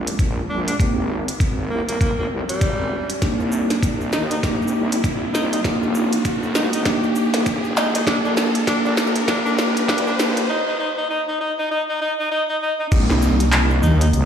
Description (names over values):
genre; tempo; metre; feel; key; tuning
glitch hop; 99 BPM; 4/4; swing 59% on 16ths; C minor; A4 = 437 Hz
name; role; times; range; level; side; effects
tine electric piano; stabs; 0.0-14.3 s; Ab3 to G4; -22 LUFS; equal; overdrive, fast stereo tremolo, sidechain pumping, dub echo
wobble bass; bass; 0.0-14.3 s; Eb1 to Eb2; -23 LUFS; equal; chorus, overdrive, high-pass filter
riser and downlifter; sound effects; 0.0-14.3 s; none; -27 LUFS; equal; none
glitchy drum kit; drums; 0.1-14.3 s; crash cymbal, handclaps, hi-hat, shaker, snare drum; -24 LUFS; equal; overdrive
electronic kick drum; drums; 0.2-13.1 s; none; -21 LUFS; equal; none
clear tenor saxophone; melody; 0.5-14.1 s; G3 to Eb4; -25 LUFS; equal; dub echo
room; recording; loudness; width
moderate plate reverb, RT60 2.2 s; played on a big sound system in a bare room, stone room reverb, high-pass filter; -18 LUFS; side -8 dB against mid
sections
0.0-12.9 A section; 12.9-14.3 B section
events
build-up 0.0-12.9; riser 0.0-10.5; filter sweep 0.0-12.9; drum fill 3.2-10.5; break 10.5-12.9; drop 12.9-14.3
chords
0.0 Bb7; 0.8 Abmaj7; 3.2 Cm7; 5.6 Fm7; 8.1 Bb; 10.5 N.C.; 12.9 Cm7